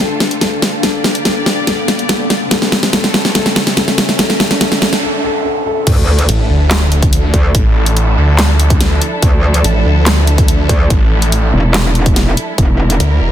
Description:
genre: heavy wobble dubstep.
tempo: 143 BPM.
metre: 4/4.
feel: half-time.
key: D harmonic minor.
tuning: A4 = 437 Hz.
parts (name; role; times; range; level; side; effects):
dark concert grand piano; melody; 0.0-5.9 s; A4; -22 LUFS; left 6 dB; ping-pong delay.
warm symphonic string section; sustained chords; 0.0-13.3 s; C#3 to D5; -22 LUFS; right 1 dB; sidechain pumping, low-pass filter.
riser, noise sweep and sub drop; sound effects; 0.0-7.5 s; none; -21 LUFS; right 1 dB; none.
ethereal airy pad; texture; 0.0-5.0 s; Bb3 to D6; -22 LUFS; left 2 dB; ensemble chorus, built-in reverb, tremolo, sidechain pumping.
dubstep drum kit; drums; 0.2-13.1 s; crash cymbal, handclaps, hi-hat, snare drum; -14 LUFS; equal; soft clipping on snare.
metallic wobble bass; bass; 5.9-13.0 s; E1 to D2; -12 LUFS; equal; distortion, chorus, overdrive.
electronic kick drum; drums; 5.9-12.7 s; none; -12 LUFS; equal; none.
snarling distorted saw bass; bass; 6.3-13.3 s; E1 to D2; -11 LUFS; equal; distortion, overdrive.
room: digital ambience.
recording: dense, heavily limited modern master.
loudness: -10 LUFS.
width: side -10 dB against mid.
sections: 0.0-5.9 A section; 5.9-13.3 B section.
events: build-up 0.0-5.9; drum fill 0.0-5.0; riser 0.0-5.0; noise sweep 4.2-5.9; break 5.0-5.9; drop 5.9-13.3; impact 5.9-7.5.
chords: 0.0 Dm; 0.8 Gm; 2.5 A; 4.2 Gm; 5.9 Dmadd9; 12.6 Edim.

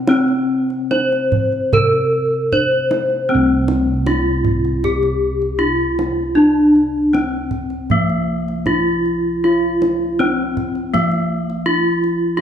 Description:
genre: Javanese gamelan.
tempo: 71-85 BPM.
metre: 4/4.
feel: straight.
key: C slendro.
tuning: A4 = 440 Hz.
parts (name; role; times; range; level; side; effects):
gamelan-type bronze metallophone; melody; 0.0-12.4 s; Bb3-45c to C5; -17 LUFS; left 1 dB; none.
gamelan-type bossed gongs; bass; 0.0-12.4 s; C2 to F4-35c; -19 LUFS; equal; none.
kendang; percussion; 0.1-12.1 s; none; -24 LUFS; right 3 dB; none.
room: moderate recital hall reverb, RT60 1.6 s.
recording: dark, warm production, faint mains hum.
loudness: -15 LUFS.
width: side -8 dB against mid.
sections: 0.0-3.3 A section; 3.3-12.4 B section.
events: none.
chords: none.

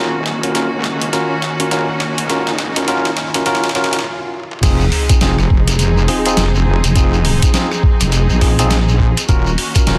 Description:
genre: glitch hop.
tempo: 103 BPM.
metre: 4/4.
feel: swing 60% on 16ths.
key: F phrygian.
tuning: A4 = 440 Hz.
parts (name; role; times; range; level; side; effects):
rich studio string section; sustained chords; 0.0-10.0 s; Eb3 to Ab4; -25 LUFS; equal; vintage 12-bit sampler grit, sidechain pumping, low-pass filter.
bell-like tine electric piano; stabs; 0.0-10.0 s; C4 to Bb4; -22 LUFS; equal; vintage 12-bit sampler grit, sidechain pumping, digital delay.
wobble bass; bass; 0.0-10.0 s; Eb1 to Db2; -19 LUFS; equal; chorus, tube saturation, high-pass filter.
riser and sub drop; sound effects; 0.0-7.0 s; none; -28 LUFS; equal; none.
boom bap sampler-style drum kit; drums; 0.3-10.0 s; crash cymbal, hi-hat, rim click, snare drum, toms; -23 LUFS; equal; high-pass filter on snare, high-pass filter on hats, high-pass filter on toms, high-pass filter on cymbals, high-pass filter on room.
electronic kick drum; drums; 4.6-9.8 s; none; -16 LUFS; equal; none.
shekere; percussion; 4.6-10.0 s; none; -27 LUFS; equal; none.
room: light reverb.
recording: dense, heavily limited modern master.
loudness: -15 LUFS.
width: mono.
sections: 0.0-4.6 A section; 4.6-10.0 B section.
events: build-up 0.0-4.6; drum fill 0.0-4.0, 4.3; stop 4.0-4.6; drop 4.6-10.0; impact 4.6-7.0.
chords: 0.0 Ebm7; 4.6 Fm7; 9.3 Ebm7.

